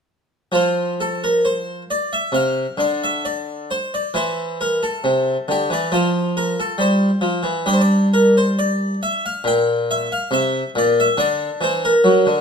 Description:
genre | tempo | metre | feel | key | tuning
classical, baroque-style suite movement for harpsichord | 68 BPM | 4/4 | rubato | F major | A4 = 443 Hz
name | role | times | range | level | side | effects
harpsichord | solo | 0.5-12.4 s | Bb2 to G5 | -16 LUFS | equal | none
room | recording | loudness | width
moderate stone room reverb, RT60 1.0 s | none | -17 LUFS | side -6 dB against mid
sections
0.5-12.4 A section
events
none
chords
0.5 F5; 4.1 C/E; 5.9 F5; 7.7 Gm; 11.2 D

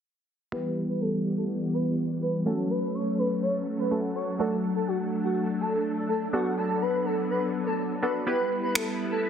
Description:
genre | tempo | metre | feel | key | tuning
dance-pop | 124 BPM | 4/4 | straight | E dorian | A4 = 441 Hz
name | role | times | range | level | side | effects
airy dreamy lead | melody | 0.5-9.2 s | F#4 to C#5 | -30 LUFS | equal | chorus, low-pass filter, tape echo
analog pluck | accompaniment | 0.5-9.3 s | A3 to B4 | -32 LUFS | right 2 dB | chorus, low-pass filter
string machine, violins | sustained chords | 0.5-9.3 s | E3 to B4 | -28 LUFS | left 1 dB | ensemble chorus, low-pass filter
electronic finger snaps | drums | 8.8-8.9 s | none | -26 LUFS | equal | soft clipping on snare
room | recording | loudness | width
moderate digital room reverb, RT60 1.0 s, digital ambience | dense, heavily limited modern master | -25 LUFS | side -8 dB against mid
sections
0.5-9.3 A section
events
filter sweep 0.5-9.3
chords
0.5 Em; 2.5 F#m; 4.4 D; 6.3 Bm7; 8.3 Em

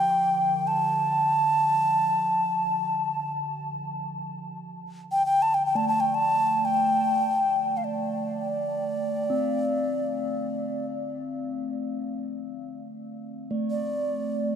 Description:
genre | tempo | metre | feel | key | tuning
world meditative, free-time meditation music | free time | none | none | D minor pentatonic | A4 = 440 Hz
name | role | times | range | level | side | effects
bright alto ocarina | melody | 0.0-14.6 s | D5 to A5 | -24 LUFS | equal | ping-pong delay
bronze singing bowl | texture | 0.0-14.6 s | D3 to C4 | -32 LUFS | equal | none
room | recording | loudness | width
wet huge ambient reverb, RT60 6.8 s | none | -23 LUFS | side -8 dB against mid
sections
0.0-12.5 A section; 12.5-14.6 A section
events
none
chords
none

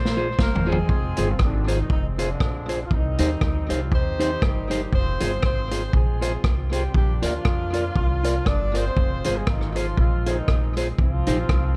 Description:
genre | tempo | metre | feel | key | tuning
ska | 119 BPM | 4/4 | swing 56% on 8ths | F dorian | A4 = 440 Hz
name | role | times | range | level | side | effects
warm trumpet | melody | 0.0-0.7 s | C5 | -35 LUFS | equal | tape echo
upright bass | bass | 0.0-11.8 s | F1 to F2 | -28 LUFS | equal | none
vintage drum kit | drums | 0.1-11.6 s | hi-hat, kick drum, rim click, snare drum, toms | -26 LUFS | equal | none
mellow electric guitar | accompaniment | 0.2-11.4 s | Eb4 to D5 | -31 LUFS | equal | tube saturation
warm horn section | melody | 0.4-11.8 s | D3 to D5 | -32 LUFS | equal | tape echo
room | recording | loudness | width
small room ambience | dark, warm production | -23 LUFS | mono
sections
0.9-11.8 A section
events
drum fill 0.0-0.9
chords
0.0 Fm; 2.9 Cm; 4.9 Fm; 6.9 Bb; 9.0 Fm; 11.0 Cm

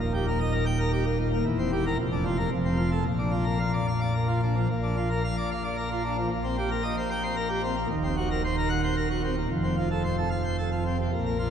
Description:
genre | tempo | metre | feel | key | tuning
classical, organ toccata | 112 BPM | 3/4 | straight | Bb major | A4 = 435 Hz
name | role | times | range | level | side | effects
pipe organ, plenum | solo | 0.0-11.5 s | Eb1 to G5 | -24 LUFS | equal | none
room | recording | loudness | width
wet cathedral reverb, RT60 5.1 s | recorded in a church or concert hall | -24 LUFS | side -8 dB against mid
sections
0.0-4.7 A section; 4.7-11.5 A section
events
none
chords
0.0 Eb; 1.5 C7/E; 2.0 Bb/F; 2.5 F; 3.1 Bb; 6.3 Eb6/Bb; 7.9 Cm7b5/Eb; 9.5 F

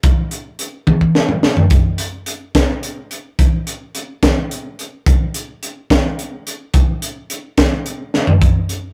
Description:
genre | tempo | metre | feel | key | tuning
rock | 72 BPM (dotted quarters) | 6/8 | straight | none | none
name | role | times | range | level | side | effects
crisp fusion drum kit | drums | 0.0-8.8 s | hi-hat, kick drum, snare drum, toms | -16 LUFS | equal | none
room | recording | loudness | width
moderate studio reverb, RT60 0.6 s | rough rehearsal-room recording, warm saturation | -17 LUFS | mono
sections
0.0-8.4 A section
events
drum fill 0.9-1.7, 8.1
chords
none

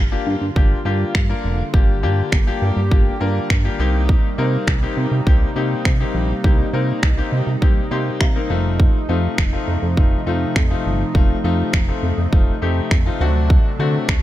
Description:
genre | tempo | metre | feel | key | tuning
dance-pop | 102 BPM | 4/4 | straight | unclear | A4 = 438 Hz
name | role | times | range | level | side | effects
chorused pulse-width pad | sustained chords | 0.0-14.2 s | C3 to G4 | -27 LUFS | right 1 dB | sidechain pumping
chorused synth bass | bass | 0.0-14.2 s | F1 to D3 | -20 LUFS | right 1 dB | sidechain pumping
clear concert grand piano | accompaniment | 0.1-14.1 s | A3 to C6 | -24 LUFS | left 6 dB | sidechain pumping
pop drum kit | drums | 0.6-14.2 s | finger snaps, kick drum | -17 LUFS | equal | none
room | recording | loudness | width
little or no reverb | none | -16 LUFS | side -14 dB against mid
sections
0.0-14.2 A section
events
grand piano fill 7.6-8.8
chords
0.0 Gm7; 3.8 Cm7; 8.5 F7; 13.2 D7

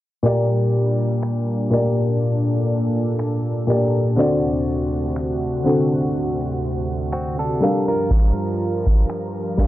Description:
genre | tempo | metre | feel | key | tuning
contemporary R&B | 61 BPM | 4/4 | swing 54% on 16ths | Bb major | A4 = 440 Hz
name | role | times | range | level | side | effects
warm grand piano | accompaniment | 0.2-9.7 s | Bb2 to F5 | -20 LUFS | left 1 dB | none
lush unison pad | sustained chords | 0.2-9.7 s | D2 to Bb4 | -24 LUFS | right 1 dB | chorus
booming analog drum machine | drums | 1.2-9.7 s | finger snaps, kick drum | -16 LUFS | equal | overdrive
direct-recorded clean electric guitar | arpeggios | 7.1-9.3 s | C4 to Bb4 | -27 LUFS | right 2 dB | none
room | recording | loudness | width
light reverb | dry, gritty hardware recording, cassette tape, low-pass filter | -18 LUFS | side -15 dB against mid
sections
0.2-9.7 A section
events
filter sweep 0.2-9.7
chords
0.2 Bb6; 4.2 D7; 7.6 Gm7

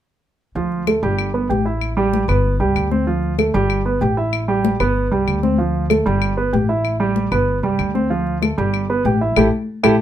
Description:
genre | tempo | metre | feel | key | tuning
Afro-Cuban jazz | 191 BPM | 4/4 | straight | unclear | A4 = 440 Hz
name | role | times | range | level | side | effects
warm grand piano | accompaniment | 0.6-9.9 s | F3 to G5 | -18 LUFS | right 3 dB | none
upright bass | bass | 0.6-10.0 s | G1 to D2 | -22 LUFS | left 1 dB | none
congas | percussion | 0.6-9.9 s | none | -22 LUFS | left 6 dB | none
claves | percussion | 0.9-9.9 s | none | -25 LUFS | left 10 dB | none
room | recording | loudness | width
moderate studio ambience, RT60 0.5 s | minimal, uncompressed stereo recording | -16 LUFS | side -11 dB against mid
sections
0.6-10.0 A section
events
band accent 9.4-10.0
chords
0.6 Dm; 1.2 A5; 2.4 G; 3.1 Dm; 3.7 A5; 5.0 G; 5.6 Dm; 6.2 A5; 7.5 G; 8.1 Dm; 8.7 G; 9.4 A5

